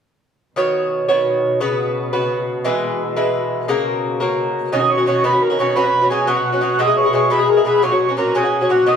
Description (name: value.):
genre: celtic folk, Celtic jig.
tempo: 116 BPM (dotted quarters).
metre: 6/8.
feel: straight.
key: B major.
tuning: A4 = 440 Hz.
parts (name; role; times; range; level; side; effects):
Irish bouzouki; accompaniment; 0.6-9.0 s; A#2 to C#5; -17 LUFS; left 2 dB; none.
muted symphonic string section; drone; 0.6-9.0 s; B2; -27 LUFS; right 2 dB; none.
mellow accordion; melody; 4.7-9.0 s; F#4 to D#5; -17 LUFS; right 3 dB; none.
room: wet stone room reverb, RT60 1.1 s.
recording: band playing live in one room.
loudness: -15 LUFS.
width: side -7 dB against mid.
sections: 0.6-4.7 A section; 4.7-9.0 B section.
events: none.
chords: 0.6 Badd9; 1.6 F#sus4; 2.6 E; 3.7 F#; 4.7 Badd9; 5.8 F#sus4; 6.8 E; 7.8 F#.